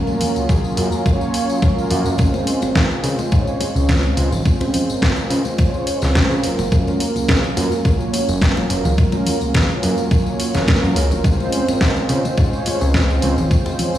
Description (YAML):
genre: nu-disco, nu disco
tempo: 106 BPM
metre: 4/4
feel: swing 53% on 16ths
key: Db major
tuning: A4 = 440 Hz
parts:
  - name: warm analog pad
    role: accompaniment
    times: 0.0-14.0 s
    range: Gb3 to Db5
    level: -20 LUFS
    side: right 1 dB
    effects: chorus, digital delay
  - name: congas and tambourine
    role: percussion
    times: 0.1-14.0 s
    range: none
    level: -27 LUFS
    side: left 3 dB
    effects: none
  - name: pop drum kit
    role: drums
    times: 0.2-13.9 s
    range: hi-hat, snare drum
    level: -23 LUFS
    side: equal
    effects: overdrive
  - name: fat analog bass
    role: bass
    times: 0.4-14.0 s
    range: Gb1 to Db3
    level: -19 LUFS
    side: equal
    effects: none
  - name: electronic kick drum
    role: drums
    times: 0.5-13.6 s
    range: none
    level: -17 LUFS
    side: equal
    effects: overdrive
room: light reverb, digital ambience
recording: played on a big sound system in a bare room, stone room reverb, small room ambience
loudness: -15 LUFS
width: side -12 dB against mid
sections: 0.0-14.0 A section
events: none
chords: 0.0 Gbmaj7; 2.2 Dbmaj7; 6.4 Gbmaj7; 11.2 Dbmaj7